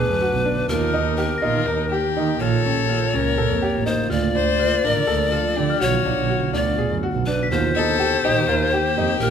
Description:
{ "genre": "contemporary instrumental, chamber music in an uneven meter", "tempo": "246 BPM (eighths)", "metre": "7/8", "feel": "straight", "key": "unclear", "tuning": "A4 = 440 Hz", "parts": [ { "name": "breathy bright pan flute", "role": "second line", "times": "0.0-9.3 s", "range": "Bb4 to D5", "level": "-23 LUFS", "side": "left 3 dB", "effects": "none" }, { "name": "shimmering ambient pad", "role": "sustained chords", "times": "0.0-9.3 s", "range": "Db3 to G4", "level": "-29 LUFS", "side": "left 1 dB", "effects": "chorus, built-in reverb" }, { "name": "clear baby grand piano", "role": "arpeggios", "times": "0.0-9.3 s", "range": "Db4 to Bb4", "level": "-26 LUFS", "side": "equal", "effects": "none" }, { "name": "muted double bass", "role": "bass", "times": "0.0-9.3 s", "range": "A1 to Eb3", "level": "-24 LUFS", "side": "right 6 dB", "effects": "none" }, { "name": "glockenspiel with rubber mallets", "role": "texture", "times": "0.0-7.7 s", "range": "D6 to B6", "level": "-33 LUFS", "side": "left 6 dB", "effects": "none" }, { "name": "dark violin", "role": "melody", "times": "0.7-9.3 s", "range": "Eb4 to C5", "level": "-25 LUFS", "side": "left 10 dB", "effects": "none" } ], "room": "moderate recital hall reverb, RT60 1.6 s", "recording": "close, detailed microphones", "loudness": "-18 LUFS", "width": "side -8 dB against mid", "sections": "0.0-9.3 A section", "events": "none", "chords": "0.0 Bm; 0.7 Eb; 2.4 Bbm; 4.1 Dm; 5.8 Bm; 7.5 Eb", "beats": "0.21 0.45 | 0.70 0.94 1.18 1.43 1.67 1.91 2.16 | 2.40 2.64 2.89 3.13 3.37 3.62 3.86 | 4.10 4.35 4.59 4.83 5.08 5.32 5.56 | 5.81 6.05 6.29 6.54 6.78 7.03 7.27 | 7.51 7.76 8.00 8.24 8.49 8.73 8.97 | 9.22" }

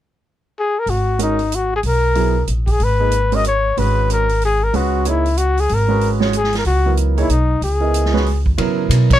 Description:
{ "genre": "modal jazz", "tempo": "187 BPM", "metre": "3/4", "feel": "swing 62% on 8ths", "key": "G# minor", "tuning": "A4 = 440 Hz", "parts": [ { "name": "breathy trumpet", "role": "melody", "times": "0.6-9.2 s", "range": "D#4 to D#5", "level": "-18 LUFS", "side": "left 3 dB", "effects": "none" }, { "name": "upright bass", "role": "bass", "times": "0.9-9.2 s", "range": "G#1 to C#3", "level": "-18 LUFS", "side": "equal", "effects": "none" }, { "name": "swinging big-band drum kit", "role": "drums", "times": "0.9-9.2 s", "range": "crash cymbal, hi-hat, kick drum, ride cymbal, snare drum", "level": "-24 LUFS", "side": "right 2 dB", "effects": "none" }, { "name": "warm grand piano", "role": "accompaniment", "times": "1.2-9.2 s", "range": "F#3 to D#5", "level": "-21 LUFS", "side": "right 5 dB", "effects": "none" } ], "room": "little or no reverb", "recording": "none", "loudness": "-15 LUFS", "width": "side -12 dB against mid", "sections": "0.9-8.6 A section", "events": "none", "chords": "0.0 N.C.; 0.9 G#m9", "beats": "0.23 0.55 | 0.87 1.19 1.51 | 1.84 2.16 2.48 | 2.80 3.12 3.44 | 3.77 4.09 4.41 | 4.73 5.05 5.37 | 5.69 6.01 6.34 | 6.66 6.98 7.30 | 7.62 7.94 8.26 | 8.58 8.90" }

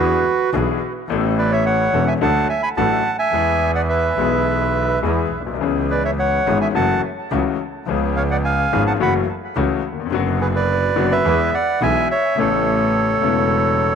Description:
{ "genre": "tango", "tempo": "106 BPM", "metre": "4/4", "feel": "rubato", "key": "unclear", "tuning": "A4 = 440 Hz", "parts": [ { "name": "bandoneon", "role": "melody", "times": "0.0-13.9 s", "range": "F#4 to B5", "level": "-19 LUFS", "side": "right 3 dB", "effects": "tape echo" }, { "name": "bright concert grand piano", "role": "accompaniment", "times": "0.0-13.9 s", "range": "E1 to A4", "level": "-22 LUFS", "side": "left 11 dB", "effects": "none" }, { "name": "bright double bass", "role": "bass", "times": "0.0-13.9 s", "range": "E1 to E2", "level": "-22 LUFS", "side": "right 3 dB", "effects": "none" } ], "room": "moderate plate reverb, RT60 2.8 s", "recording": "1960s-style stereo", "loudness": "-16 LUFS", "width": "side -7 dB against mid", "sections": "0.0-13.9 A section", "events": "none", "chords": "0.0 E7; 1.1 Aadd9; 2.2 D; 3.3 E; 5.6 C#m7; 6.7 F#m7; 7.9 C#7; 9.0 F#m7; 10.1 Bm/F#; 11.2 E; 12.4 Aadd9", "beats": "0.54 | 1.10 1.66 2.21 2.77 | 3.33 3.90 4.46 5.03 | 5.61 6.18 6.75 7.31 | 7.88 8.44 9.00 9.56 | 10.12 10.68 11.25 11.81 | 12.37 12.94 13.51" }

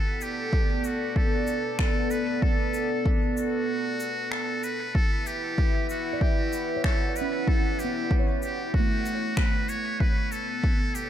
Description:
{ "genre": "ambient dub", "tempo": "95 BPM", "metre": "4/4", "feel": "swing 58% on 16ths", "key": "B minor", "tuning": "A4 = 440 Hz", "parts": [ { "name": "trumpet with metal mute", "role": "melody", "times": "0.0-11.1 s", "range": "F#4 to C#5", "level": "-31 LUFS", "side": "equal", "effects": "dub echo" }, { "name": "warm analog pad", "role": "sustained chords", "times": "0.0-11.1 s", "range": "B3 to F#5", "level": "-30 LUFS", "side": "equal", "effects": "chorus" }, { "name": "electronic cabasa and finger snaps", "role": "drums", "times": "0.2-11.1 s", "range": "none", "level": "-38 LUFS", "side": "left 1 dB", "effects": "dub echo" }, { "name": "electronic kick drum", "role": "drums", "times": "0.5-10.8 s", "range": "none", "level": "-25 LUFS", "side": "equal", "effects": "overdrive" }, { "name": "handpan", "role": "arpeggios", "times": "6.1-11.1 s", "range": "A3 to D5", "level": "-32 LUFS", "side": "right 3 dB", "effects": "dub echo" } ], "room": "moderate concert hall reverb, RT60 2.2 s", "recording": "none", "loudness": "-24 LUFS", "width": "side -10 dB against mid", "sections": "0.0-11.1 A section", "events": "break 3.7-5.0", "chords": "0.0 Bm7; 5.0 Em9; 10.0 B7sus2", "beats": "0.53 1.16 1.79 | 2.42 3.06 3.69 4.32 | 4.95 5.58 6.21 6.84 | 7.48 8.11 8.74 9.37 | 10.00 10.63" }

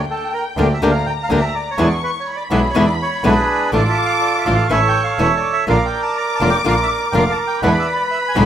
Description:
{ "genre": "tango", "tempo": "124 BPM", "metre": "4/4", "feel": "rubato", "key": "unclear", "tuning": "A4 = 440 Hz", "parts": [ { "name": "dark studio violin section", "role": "second line", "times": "0.0-8.5 s", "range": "G5 to D6", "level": "-23 LUFS", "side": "left 4 dB", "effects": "none" }, { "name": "bandoneon", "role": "stabs", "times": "0.0-8.5 s", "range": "C#4 to Bb4", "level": "-29 LUFS", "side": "right 6 dB", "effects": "none" }, { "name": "clear double bass", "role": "bass", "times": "0.0-8.5 s", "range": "E1 to E2", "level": "-19 LUFS", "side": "right 1 dB", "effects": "none" }, { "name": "bandoneon", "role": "melody", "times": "0.1-8.5 s", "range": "D4 to Bb5", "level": "-19 LUFS", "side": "right 4 dB", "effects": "none" }, { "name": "flamenco guitar", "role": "accompaniment", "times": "0.6-8.4 s", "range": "B2 to G4", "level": "-19 LUFS", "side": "left 3 dB", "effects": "none" } ], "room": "light reverb, small room ambience", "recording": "rough home demo mix", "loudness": "-14 LUFS", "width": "side -10 dB against mid", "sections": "0.0-8.5 A section", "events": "none", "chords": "0.0 Gm; 1.8 E7; 3.7 Dm/A; 4.7 A; 5.7 Bb; 7.6 E7", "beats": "0.33 0.82 1.30 | 1.78 2.27 2.75 3.24 | 3.73 4.21 4.70 5.19 | 5.68 6.17 6.65 7.14 | 7.63 8.11" }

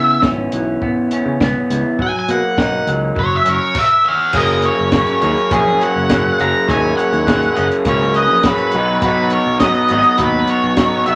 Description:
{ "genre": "indie rock", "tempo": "102 BPM", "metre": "4/4", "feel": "straight", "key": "unclear", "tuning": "A4 = 439 Hz", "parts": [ { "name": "octave-fuzz lead guitar", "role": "melody", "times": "0.0-11.2 s", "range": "G#4 to A#5", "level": "-18 LUFS", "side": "equal", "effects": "distortion" }, { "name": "electric guitar through a small old amp", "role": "riff", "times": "0.0-11.2 s", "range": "E3 to G#4", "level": "-19 LUFS", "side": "equal", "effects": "none" }, { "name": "overdriven picked electric bass", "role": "bass", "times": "0.0-11.2 s", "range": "F#1 to C#3", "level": "-25 LUFS", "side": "equal", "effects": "none" }, { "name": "compact cocktail drum kit", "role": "drums", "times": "0.2-11.2 s", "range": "crash cymbal, hi-hat, kick drum, snare drum", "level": "-23 LUFS", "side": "equal", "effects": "none" }, { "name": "bright trumpet", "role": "second line", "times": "3.5-11.2 s", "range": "C#4 to F#5", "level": "-28 LUFS", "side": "equal", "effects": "none" } ], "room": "moderate studio reverb, RT60 0.5 s", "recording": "none", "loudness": "-15 LUFS", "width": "mono", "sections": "0.0-4.3 A section; 4.3-11.2 B section", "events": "lead electric guitar solo 0.0-4.3", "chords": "0.0 C#m7; 2.0 Bmaj7; 3.2 F#; 4.3 F#add9; 8.7 B", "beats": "0.24 0.83 1.41 | 2.00 2.59 3.17 3.76 | 4.34 4.93 5.52 6.10 | 6.69 7.27 7.86 8.45 | 9.03 9.62 10.20 10.79" }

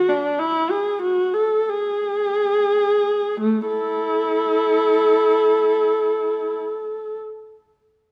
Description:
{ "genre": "classical, free, expressive piece for unaccompanied viola", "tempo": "28-51 BPM", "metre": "4/4", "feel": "rubato", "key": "unclear", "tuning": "A4 = 439 Hz", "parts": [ { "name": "dark viola", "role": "solo", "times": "0.0-7.2 s", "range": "A3 to A4", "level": "-20 LUFS", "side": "equal", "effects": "none" } ], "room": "moderate recital hall reverb, RT60 1.5 s", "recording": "none", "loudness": "-20 LUFS", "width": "mono", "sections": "0.0-3.4 A section; 3.4-8.1 B section", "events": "slowing down 0.0-3.4", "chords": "none", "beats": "0.37 1.68 | 3.40 4.89 6.36" }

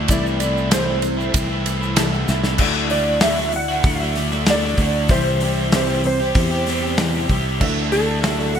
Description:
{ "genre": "folk rock and heartland rock", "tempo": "96 BPM", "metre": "4/4", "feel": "straight", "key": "unclear", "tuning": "A4 = 441 Hz", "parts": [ { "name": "clean lap steel guitar", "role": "melody", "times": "0.0-8.6 s", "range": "A4 to F#5", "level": "-23 LUFS", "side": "right 1 dB", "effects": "ensemble chorus, ping-pong delay" }, { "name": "picked steel-string acoustic guitar", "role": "accompaniment", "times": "0.0-8.6 s", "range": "C3 to A4", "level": "-27 LUFS", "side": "left 6 dB", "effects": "ensemble chorus" }, { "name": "overdriven electric guitar", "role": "riff", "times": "0.0-8.6 s", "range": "C3 to G4", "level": "-24 LUFS", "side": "right 1 dB", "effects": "wide subtle chorus" }, { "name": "fingered electric bass", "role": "bass", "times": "0.0-8.6 s", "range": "C2 to E2", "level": "-23 LUFS", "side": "equal", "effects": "none" }, { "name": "warm grand piano", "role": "accompaniment", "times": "0.1-8.6 s", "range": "E4 to A5", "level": "-32 LUFS", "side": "right 4 dB", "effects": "lush chorus" }, { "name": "natural country drum kit", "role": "drums", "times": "0.1-8.6 s", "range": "crash cymbal, hi-hat, kick drum, ride cymbal, snare drum", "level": "-21 LUFS", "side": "equal", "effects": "gated reverb" }, { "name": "tube shaker", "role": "percussion", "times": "0.1-2.4 s", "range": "none", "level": "-35 LUFS", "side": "right 8 dB", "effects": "none" } ], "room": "light reverb, small room ambience", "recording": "bright 1980s-style digital production", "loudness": "-16 LUFS", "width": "side -8 dB against mid", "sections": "0.0-2.6 A section; 2.6-8.6 A section", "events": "grand piano fill 1.7-2.6; drum fill 2.3-2.6", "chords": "0.1 Am/C; 2.6 Dadd9; 5.1 C; 7.6 Dadd9", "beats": "| 0.09 0.72 1.34 1.97 | 2.60 3.22 3.85 4.48 | 5.10 5.73 6.36 6.99 | 7.61 8.24" }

